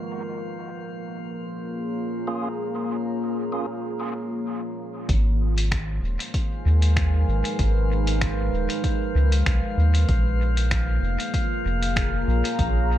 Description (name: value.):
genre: ambient dub.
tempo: 96 BPM.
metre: 4/4.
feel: swing 55% on 16ths.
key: G# dorian.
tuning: A4 = 440 Hz.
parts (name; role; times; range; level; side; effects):
deep dark ambient pad; sustained chords; 0.0-13.0 s; G#3 to A#5; -29 LUFS; equal; chorus, built-in reverb.
drifting glass-harmonics texture; texture; 0.0-13.0 s; E#3 to E#5; -34 LUFS; left 1 dB; chorus, built-in reverb.
tonewheel organ; stabs; 2.3-3.7 s; A#3 to G#4; -35 LUFS; right 2 dB; fast rotary speaker, low-pass filter, dub echo.
soft dub sub bass; bass; 5.1-13.0 s; D#1 to D#2; -21 LUFS; equal; none.
electronic kick drum; drums; 5.1-12.7 s; none; -26 LUFS; equal; none.
lo-fi sampler-style drum kit; drums; 5.1-12.7 s; finger snaps, hi-hat; -31 LUFS; left 1 dB; dub echo.
room: digital ambience.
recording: none.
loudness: -21 LUFS.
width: side -12 dB against mid.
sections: 0.0-5.1 A section; 5.1-13.0 B section.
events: break 3.8-5.1.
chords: 0.1 A#m7; 5.1 G#m; 10.1 A#m7.